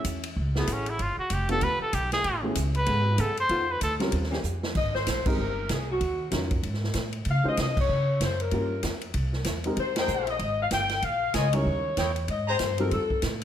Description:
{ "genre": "jazz, big band swing", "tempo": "191 BPM", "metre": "4/4", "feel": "swing 60% on 8ths", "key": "Ab major from 4.8 s", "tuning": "A4 = 439 Hz", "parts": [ { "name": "clear trumpet", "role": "melody", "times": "0.0-3.9 s", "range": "B3 to C5", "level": "-27 LUFS", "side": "equal", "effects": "none" }, { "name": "dark baby grand piano", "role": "accompaniment", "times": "0.0-12.9 s", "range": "Gb3 to C5", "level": "-32 LUFS", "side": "equal", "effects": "none" }, { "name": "upright bass", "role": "bass", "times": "0.0-13.4 s", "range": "F1 to Db3", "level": "-29 LUFS", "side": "equal", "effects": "none" }, { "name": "swinging big-band drum kit", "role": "drums", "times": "0.0-13.4 s", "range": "crash cymbal, hi-hat, kick drum, ride cymbal, snare drum", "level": "-32 LUFS", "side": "right 1 dB", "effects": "none" }, { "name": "clear saxophone section", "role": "sustained chords", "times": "0.6-4.4 s", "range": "C#3 to G#4", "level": "-34 LUFS", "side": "equal", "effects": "none" }, { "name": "mellow saxophone section", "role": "melody", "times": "4.8-13.2 s", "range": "Gb4 to G5", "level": "-28 LUFS", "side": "left 3 dB", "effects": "none" }, { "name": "warm trumpet section", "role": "stabs", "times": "10.0-12.6 s", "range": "Eb4 to Bb5", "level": "-33 LUFS", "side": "right 2 dB", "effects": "none" } ], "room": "moderate recital hall reverb, RT60 1.3 s", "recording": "none", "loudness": "-24 LUFS", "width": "side -10 dB against mid", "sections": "0.0-4.8 A section; 4.8-13.4 B section", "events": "trumpet solo 0.0-4.8; drum fill 4.4-4.8; band accent 5.2, 7.7, 9.9", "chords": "0.0 F#m9; 1.0 G9; 2.2 Amaj9; 3.5 F7#11; 4.1 D#13; 4.8 Abmaj9; 6.0 Ebm9; 6.6 N.C.; 7.3 Dbmaj7sus2; 8.5 Gm7b5; 9.1 C7b13; 9.8 Fm11; 11.0 Bbm7; 11.7 Eb7b9; 12.3 Abmaj9; 12.9 F", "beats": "0.05 0.37 0.68 | 0.99 1.31 1.62 1.94 | 2.25 2.56 2.88 3.19 | 3.50 3.82 4.13 4.45 | 4.76 5.07 5.38 5.70 | 6.01 6.33 6.64 6.95 | 7.26 7.58 7.89 8.21 | 8.52 8.83 9.14 9.46 | 9.77 10.09 10.40 10.71 | 11.03 11.34 11.66 11.97 | 12.29 12.60 12.91 13.23" }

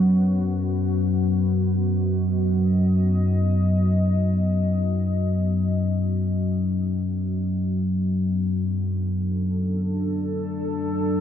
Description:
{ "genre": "dark ambient drone", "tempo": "free time", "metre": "none", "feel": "none", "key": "unclear", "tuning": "A4 = 443 Hz", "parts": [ { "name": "deep dark ambient pad", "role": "sustained chords", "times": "0.0-11.2 s", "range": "B3 to D#5", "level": "-31 LUFS", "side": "left 1 dB", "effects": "chorus, built-in reverb" }, { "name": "analog drone", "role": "drone", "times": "0.0-11.2 s", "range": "F#2 to F#3", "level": "-21 LUFS", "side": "left 1 dB", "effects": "chorus" } ], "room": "wet cathedral reverb, RT60 6.2 s", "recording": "none", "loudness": "-21 LUFS", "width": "side -9 dB against mid", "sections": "0.0-11.2 A section", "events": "none", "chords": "0.0 B; 6.5 Bm7/F#", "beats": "free time" }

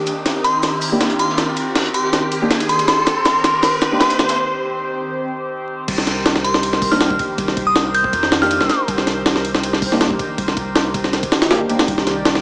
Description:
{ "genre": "drum and bass, jungle", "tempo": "160 BPM", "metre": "4/4", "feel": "straight", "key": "C minor", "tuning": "A4 = 439 Hz", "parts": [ { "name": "warbly tape-like pad", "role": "sustained chords", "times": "0.0-12.4 s", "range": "Eb3 to D5", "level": "-23 LUFS", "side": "equal", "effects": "chorus, built-in reverb, phaser" }, { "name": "riser", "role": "sound effects", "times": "0.0-4.4 s", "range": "none", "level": "-25 LUFS", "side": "equal", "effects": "none" }, { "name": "crunchy breakbeat drum kit", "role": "drums", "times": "0.1-4.4 s", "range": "hi-hat, shaker, snare drum", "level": "-28 LUFS", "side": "equal", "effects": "none" }, { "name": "jungle sampler-style drum kit", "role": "drums", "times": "0.1-12.4 s", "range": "crash cymbal, hi-hat, kick drum, ride cymbal, snare drum", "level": "-18 LUFS", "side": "equal", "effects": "none" }, { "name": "glassy synth bell", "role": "melody", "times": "0.4-8.8 s", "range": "C6 to G6", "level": "-19 LUFS", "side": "equal", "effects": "chorus, phaser, dub echo" }, { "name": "deep mellow chord stab", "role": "stabs", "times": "0.9-4.4, 6.9-11.9 s", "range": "Bb3 to G4", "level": "-23 LUFS", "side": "equal", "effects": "chorus, dub echo" }, { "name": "saturated sub bass", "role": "bass", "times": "5.9-12.4 s", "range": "G1 to F2", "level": "-27 LUFS", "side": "equal", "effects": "tube saturation" } ], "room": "moderate lush hall reverb, RT60 1.9 s, studio ambience", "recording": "vinyl crackle, small speaker sound", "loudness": "-15 LUFS", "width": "side -29 dB against mid", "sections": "0.0-5.9 A section; 5.9-12.4 B section", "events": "build-up 0.0-5.9; drum fill 0.0-4.4; riser 0.0-4.4; filter sweep on synth bell 0.0-5.9; break 4.4-5.9; drop 5.9-12.4", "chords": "0.0 Cm7", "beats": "0.26 0.63 1.01 | 1.38 1.76 2.13 2.51 | 2.88 3.26 3.63 4.01 | 4.38 4.76 5.13 5.51 | 5.88 6.26 6.63 7.01 | 7.38 7.76 8.13 8.51 | 8.88 9.26 9.63 10.01 | 10.38 10.76 11.13 11.51 | 11.88 12.26" }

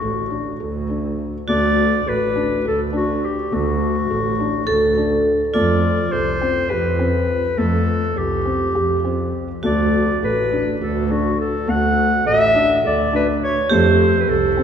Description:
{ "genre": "contemporary instrumental, chamber music in an uneven meter", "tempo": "207 BPM (eighths)", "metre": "7/8", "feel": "straight", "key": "D major", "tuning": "A4 = 440 Hz", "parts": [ { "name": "clear clarinet", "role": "melody", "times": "0.0-14.6 s", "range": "F#4 to F#5", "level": "-20 LUFS", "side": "left 1 dB", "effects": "none" }, { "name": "felt-muted upright piano", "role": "arpeggios", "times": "0.0-14.6 s", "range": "A3 to A4", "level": "-23 LUFS", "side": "left 2 dB", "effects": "none" }, { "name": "rich double bass", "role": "bass", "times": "0.0-14.6 s", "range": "A1 to F2", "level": "-22 LUFS", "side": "right 1 dB", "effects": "none" }, { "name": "vibraphone with hard mallets", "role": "second line", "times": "1.5-14.6 s", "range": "F4 to A4", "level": "-23 LUFS", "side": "right 2 dB", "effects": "none" } ], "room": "wet church reverb, RT60 3.1 s", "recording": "recorded in a church or concert hall", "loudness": "-16 LUFS", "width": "side -8 dB against mid", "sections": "0.0-1.5 A section; 1.5-14.6 B section", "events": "none", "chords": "0.0 D; 5.5 Fadd9; 9.6 D; 13.7 Fadd9", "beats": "0.01 0.30 0.60 0.90 1.19 | 1.48 1.77 2.07 2.36 2.65 2.94 3.23 | 3.52 3.80 4.09 4.38 4.67 4.96 5.25 | 5.54 5.82 6.11 6.40 6.69 6.98 7.27 | 7.56 7.86 8.15 8.44 8.74 9.03 9.33 | 9.62 9.91 10.21 10.50 10.79 11.09 11.38 | 11.67 11.96 12.25 12.54 12.83 13.12 13.40 | 13.69 13.98 14.27 14.56" }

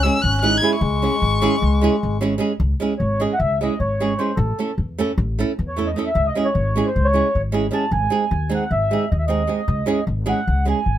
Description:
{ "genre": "balkan folk, Balkan wedding band", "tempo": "304 BPM (eighths)", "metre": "9/8", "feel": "straight", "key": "C# harmonic minor", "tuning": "A4 = 440 Hz", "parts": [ { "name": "dark violin", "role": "melody", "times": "0.0-2.2 s", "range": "C#6 to G#6", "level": "-21 LUFS", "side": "left 2 dB", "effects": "none" }, { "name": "mellow accordion", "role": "second line", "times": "0.0-11.0 s", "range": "G#3 to A5", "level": "-22 LUFS", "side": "equal", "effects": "none" }, { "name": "flamenco guitar", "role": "accompaniment", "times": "0.0-10.8 s", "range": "G#3 to A4", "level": "-21 LUFS", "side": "right 4 dB", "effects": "none" }, { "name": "upright bass", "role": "bass", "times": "0.0-11.0 s", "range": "G#1 to E2", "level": "-21 LUFS", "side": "left 1 dB", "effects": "none" } ], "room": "light reverb", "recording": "close, detailed microphones", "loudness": "-17 LUFS", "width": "side -11 dB against mid", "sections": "0.0-2.6 A section; 2.6-11.0 B section", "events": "accordion solo 2.6-11.0", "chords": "0.0 C#m; 4.4 A; 6.1 C#m; 7.9 G#; 9.7 C#m", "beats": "0.01 0.21 0.41 0.61 | 0.81 1.00 1.20 1.40 1.60 1.80 2.00 2.19 2.39 | 2.59 2.79 2.99 3.18 3.38 3.58 3.78 3.98 4.17 | 4.37 4.57 4.77 4.97 5.16 5.36 5.56 5.75 5.95 | 6.15 6.34 6.54 6.74 6.93 7.13 7.33 7.52 7.72 | 7.92 8.11 8.31 8.50 8.70 8.89 9.09 9.28 9.48 | 9.67 9.87 10.06 10.26 10.45 10.65 10.84" }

